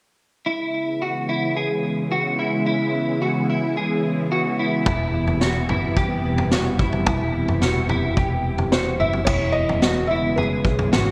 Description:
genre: dream pop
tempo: 109 BPM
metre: 4/4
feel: straight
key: E major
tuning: A4 = 439 Hz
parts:
  - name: soft string machine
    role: sustained chords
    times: 0.8-11.1 s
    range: C3 to E4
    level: -27 LUFS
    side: equal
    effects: ensemble chorus
  - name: semi-hollow electric guitar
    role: arpeggios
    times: 0.5-11.1 s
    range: E4 to G#4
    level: -26 LUFS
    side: equal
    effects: ensemble chorus, delay
  - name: clear double bass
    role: bass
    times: 4.9-11.1 s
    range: E1 to B1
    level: -28 LUFS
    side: equal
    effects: none
  - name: vintage drum kit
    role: drums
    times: 4.9-11.1 s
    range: crash cymbal, kick drum, snare drum, toms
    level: -25 LUFS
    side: equal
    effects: gated reverb
  - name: felt-muted upright piano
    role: melody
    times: 8.7-10.9 s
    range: B4 to E5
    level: -27 LUFS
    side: equal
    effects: delay
room: moderate plate reverb, RT60 1.9 s, small room ambience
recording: bright 1980s-style digital production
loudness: -22 LUFS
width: mono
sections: 0.5-9.3 A section; 9.3-11.1 B section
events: none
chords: 0.5 E6; 4.9 Cmaj7/E; 9.3 E6

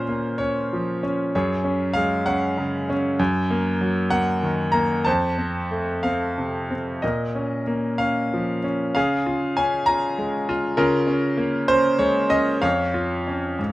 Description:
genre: classical, lyrical solo piano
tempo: 60-67 BPM (dotted quarters)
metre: 6/8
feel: rubato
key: Bb minor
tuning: A4 = 441 Hz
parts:
  - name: bright grand piano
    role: solo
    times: 0.0-13.7 s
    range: F2 to Bb5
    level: -20 LUFS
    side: equal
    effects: none
room: light reverb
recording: close, detailed microphones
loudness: -20 LUFS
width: side -17 dB against mid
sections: 0.0-13.7 A section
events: none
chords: 0.0 Bbm; 1.3 Gbsus2; 3.2 Ebm/Gb; 5.1 F; 7.0 Bbm; 9.0 Db; 10.8 Bbm7/Db; 12.6 Db/F

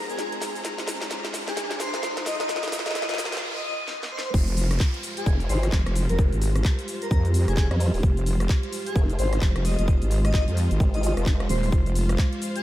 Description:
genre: bass house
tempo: 130 BPM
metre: 4/4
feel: swing 60% on 16ths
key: F minor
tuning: A4 = 439 Hz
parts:
  - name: dark analog pad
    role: sustained chords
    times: 0.0-12.6 s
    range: Ab3 to C5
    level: -35 LUFS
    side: right 3 dB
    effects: chorus, sidechain pumping
  - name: riser, noise sweep and downlifter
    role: sound effects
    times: 0.0-8.0 s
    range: none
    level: -38 LUFS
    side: equal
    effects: none
  - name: bright studio string section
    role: texture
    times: 0.0-12.6 s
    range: F4 to Bb5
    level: -38 LUFS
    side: left 2 dB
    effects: sidechain pumping
  - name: airy dreamy lead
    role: melody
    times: 0.1-12.6 s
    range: Ab4 to Eb5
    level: -32 LUFS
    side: left 1 dB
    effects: chorus, phaser, analog delay
  - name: garage drum kit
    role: drums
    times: 0.1-12.6 s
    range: cabasa, crash cymbal, handclaps, hi-hat, rim click, snare drum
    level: -32 LUFS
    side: equal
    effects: none
  - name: wobble bass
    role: bass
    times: 4.3-12.2 s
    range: Eb1 to F2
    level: -23 LUFS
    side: equal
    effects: chorus, overdrive, sidechain pumping
  - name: electronic kick drum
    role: drums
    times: 4.3-12.3 s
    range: none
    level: -22 LUFS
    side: equal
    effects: none
  - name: formant-sweep wobble bass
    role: bass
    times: 5.3-11.5 s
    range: Eb1 to F2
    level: -24 LUFS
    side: equal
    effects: chorus, tube saturation, sidechain pumping
room: light reverb, digital ambience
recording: high-pass filter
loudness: -22 LUFS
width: side -14 dB against mid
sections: 0.0-4.3 A section; 4.3-12.6 B section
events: build-up 0.0-4.3; drum fill 0.0-3.4, 3.9-4.3; riser 0.0-3.4; noise sweep 2.5-4.3; break 3.4-4.3; drop 4.3-12.6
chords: 0.0 Fm; 4.3 Fmadd9

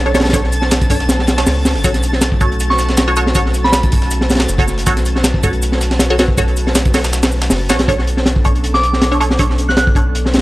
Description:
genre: drum and bass, jungle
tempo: 159 BPM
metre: 4/4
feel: swing 53% on 16ths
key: B minor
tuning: A4 = 437 Hz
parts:
  - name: airy breathy pad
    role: sustained chords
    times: 0.0-10.4 s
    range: A3 to B4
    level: -25 LUFS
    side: left 1 dB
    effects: chorus
  - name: soft dub sub bass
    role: bass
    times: 0.0-10.4 s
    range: F#1 to C#2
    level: -17 LUFS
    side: equal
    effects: tube saturation
  - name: twinkling granular texture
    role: texture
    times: 0.0-7.9 s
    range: A5 to A6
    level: -28 LUFS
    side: equal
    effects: built-in reverb
  - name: filtered dub chord stab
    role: stabs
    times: 0.1-10.0 s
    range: D4 to C#5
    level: -20 LUFS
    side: right 1 dB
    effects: phaser, dub echo
  - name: breakbeat sampler-style drum kit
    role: drums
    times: 0.1-7.8 s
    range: hi-hat, shaker, snare drum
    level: -22 LUFS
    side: equal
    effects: high-pass filter on perc, high-pass filter on hats, high-pass filter on snare, high-pass filter on room
  - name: crunchy breakbeat drum kit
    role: drums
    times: 0.1-10.4 s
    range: hi-hat, kick drum, snare drum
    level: -15 LUFS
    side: equal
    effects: none
  - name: soft synth bell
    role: melody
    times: 2.7-3.9, 8.7-9.8 s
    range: B5 to F#6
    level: -20 LUFS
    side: right 1 dB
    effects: chorus, dub echo
room: small room ambience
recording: dry, gritty hardware recording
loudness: -12 LUFS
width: side -18 dB against mid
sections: 0.0-7.9 A section; 7.9-10.4 A section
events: drop 0.0-7.9, 7.9-10.4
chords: 0.0 Bm9; 1.8 F#m; 7.9 Bm9

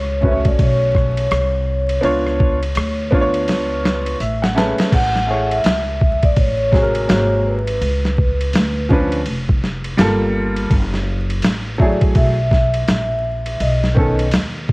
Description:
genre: hip hop, jazz-hop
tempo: 83 BPM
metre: 4/4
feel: swing 62% on 16ths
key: A major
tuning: A4 = 440 Hz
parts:
  - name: vibraphone with soft mallets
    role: melody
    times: 0.0-14.3 s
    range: B4 to F#5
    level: -21 LUFS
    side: equal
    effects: none
  - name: upright bass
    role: bass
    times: 0.0-14.7 s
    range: E#1 to D#2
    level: -21 LUFS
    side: equal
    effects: none
  - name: bright upright piano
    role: accompaniment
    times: 0.2-14.3 s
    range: C3 to A5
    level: -19 LUFS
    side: equal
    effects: none
  - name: boom bap sampler-style drum kit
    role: drums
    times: 0.2-14.7 s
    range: crash cymbal, hi-hat, kick drum, ride cymbal, rim click, snare drum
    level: -18 LUFS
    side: equal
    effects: none
room: light reverb, small room ambience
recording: worn, warbling old tape, cassette tape, vinyl crackle, warbly pitch drift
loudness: -14 LUFS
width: side -25 dB against mid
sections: 0.0-4.9 A section; 4.9-14.7 B section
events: drum fill 3.5-4.9; upright piano fill 3.8-4.9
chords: 0.0 A69; 2.0 C#7b9; 4.2 Amaj9; 4.9 Amaj7; 7.1 G#9; 7.8 C#7b9; 10.0 Gm9; 10.7 F#m9; 13.6 B9

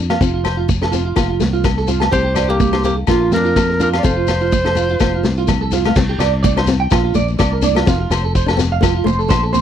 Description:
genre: highlife guitar band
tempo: 125 BPM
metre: 4/4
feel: swing 55% on 16ths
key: unclear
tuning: A4 = 439 Hz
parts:
  - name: flamenco guitar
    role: accompaniment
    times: 0.0-9.6 s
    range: A3 to D4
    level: -22 LUFS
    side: left 8 dB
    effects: none
  - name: fingered electric bass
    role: bass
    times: 0.0-9.6 s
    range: F1 to F2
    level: -19 LUFS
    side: equal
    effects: none
  - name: electric guitar at the edge of break-up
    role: arpeggios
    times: 0.1-9.6 s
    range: F4 to A5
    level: -20 LUFS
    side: right 8 dB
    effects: lush chorus, slapback echo
  - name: vintage drum kit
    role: drums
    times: 0.1-9.4 s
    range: crash cymbal, kick drum, snare drum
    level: -19 LUFS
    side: equal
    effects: none
  - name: agogo bells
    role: percussion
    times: 0.1-9.4 s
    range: none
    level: -26 LUFS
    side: left 25 dB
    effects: none
  - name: congas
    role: percussion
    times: 0.2-9.6 s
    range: none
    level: -25 LUFS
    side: right 17 dB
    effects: none
  - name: shekere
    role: percussion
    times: 0.2-9.6 s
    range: none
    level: -28 LUFS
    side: left 6 dB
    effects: none
  - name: warm clarinet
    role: melody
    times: 2.1-5.5 s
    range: F4 to D5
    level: -19 LUFS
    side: equal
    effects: none
  - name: koto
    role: second line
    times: 2.1-6.2 s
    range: Bb3 to G4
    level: -26 LUFS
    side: left 7 dB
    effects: none
room: little or no reverb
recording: dry, close 1970s-style studio recording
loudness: -13 LUFS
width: side -9 dB against mid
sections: 0.0-6.0 A section; 6.0-9.6 B section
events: drum fill 5.7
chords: 0.2 F; 2.1 Csus2; 3.1 Bb; 4.0 F; 6.0 Csus2; 6.9 Bb; 7.9 F

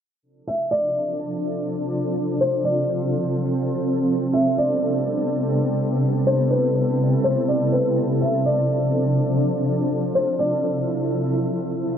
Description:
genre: hip hop, atmospheric cloud-rap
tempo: 124 BPM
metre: 4/4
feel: half-time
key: D dorian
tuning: A4 = 445 Hz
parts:
  - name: shimmering ambient pad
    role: sustained chords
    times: 0.9-12.0 s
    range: C3 to A4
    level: -21 LUFS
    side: equal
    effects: chorus, built-in reverb
  - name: felt-muted upright piano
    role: melody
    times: 0.5-11.8 s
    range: B4 to E5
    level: -24 LUFS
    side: left 1 dB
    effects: low-pass filter, tape echo
room: light reverb, small room ambience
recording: dry, gritty hardware recording, low-pass filter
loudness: -19 LUFS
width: side -8 dB against mid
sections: 0.2-12.0 A section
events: filter sweep 0.2-12.0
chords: 0.2 Dm7; 4.1 Am11; 8.0 Dm7

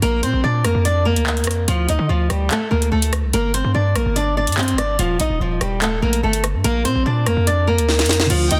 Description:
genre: hip hop, drill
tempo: 145 BPM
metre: 4/4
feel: half-time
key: unclear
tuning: A4 = 440 Hz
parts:
  - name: flamenco guitar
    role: melody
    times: 0.0-8.6 s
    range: F3 to Eb5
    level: -22 LUFS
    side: equal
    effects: none
  - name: hard-hitting 808-style bass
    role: bass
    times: 0.0-8.6 s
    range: Eb1 to D3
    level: -22 LUFS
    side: equal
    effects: none
  - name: drill drum kit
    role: drums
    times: 0.0-8.6 s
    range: crash cymbal, handclaps, hi-hat, rim click, snare drum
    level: -25 LUFS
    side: equal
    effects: none
  - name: felt-muted upright piano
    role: accompaniment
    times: 8.3-8.6 s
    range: D3 to F4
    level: -25 LUFS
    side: equal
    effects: none
  - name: warm studio violin section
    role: second line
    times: 8.5-8.6 s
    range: G5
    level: -26 LUFS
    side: equal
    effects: none
room: light reverb, small room ambience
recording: dense, heavily limited modern master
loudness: -18 LUFS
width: mono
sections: 0.0-8.3 A section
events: drum fill 7.9-8.3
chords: 0.0 Bb; 1.7 Dm; 3.3 Gm; 5.0 Ebadd9; 6.6 Bb

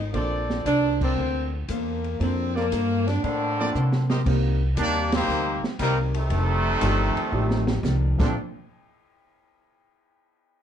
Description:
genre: jazz, big band swing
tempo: 117 BPM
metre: 4/4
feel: swing 69% on 8ths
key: Bb major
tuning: A4 = 439 Hz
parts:
  - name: warm saxophone section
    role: melody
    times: 0.0-4.1 s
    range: Bb3 to D#4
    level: -26 LUFS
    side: equal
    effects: none
  - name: upright bass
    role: bass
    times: 0.0-8.3 s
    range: F1 to C3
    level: -25 LUFS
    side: equal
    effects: none
  - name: vintage hollow-body jazz guitar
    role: accompaniment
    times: 0.1-8.3 s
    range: F2 to C5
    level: -34 LUFS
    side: left 4 dB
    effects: none
  - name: warm baby grand piano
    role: accompaniment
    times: 0.1-8.3 s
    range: F3 to D5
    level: -32 LUFS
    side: right 3 dB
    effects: none
  - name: mellow trumpet section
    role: stabs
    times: 0.1-4.2 s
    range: G4 to Eb5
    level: -32 LUFS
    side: right 1 dB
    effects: none
  - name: open jazz drum kit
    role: drums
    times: 0.1-8.3 s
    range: crash cymbal, hi-hat, kick drum, ride cymbal, snare drum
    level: -30 LUFS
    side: right 1 dB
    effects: none
  - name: muted trombone section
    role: second line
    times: 3.2-8.3 s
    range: F2 to D4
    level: -30 LUFS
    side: right 2 dB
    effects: none
  - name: clear trumpet section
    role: melody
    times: 4.8-8.4 s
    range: G3 to D5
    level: -27 LUFS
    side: equal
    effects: none
room: moderate club reverb, RT60 0.7 s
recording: dark, warm production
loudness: -21 LUFS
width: side -9 dB against mid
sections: 0.0-4.2 A section; 4.2-8.3 B section; 8.3-10.4 C section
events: band accent 0.9, 5.0; drum fill 3.7-4.2, 7.3-7.8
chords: 0.1 Bbmaj9; 4.2 Cm7; 6.3 F13; 8.1 Bbmaj9; 8.3 N.C.

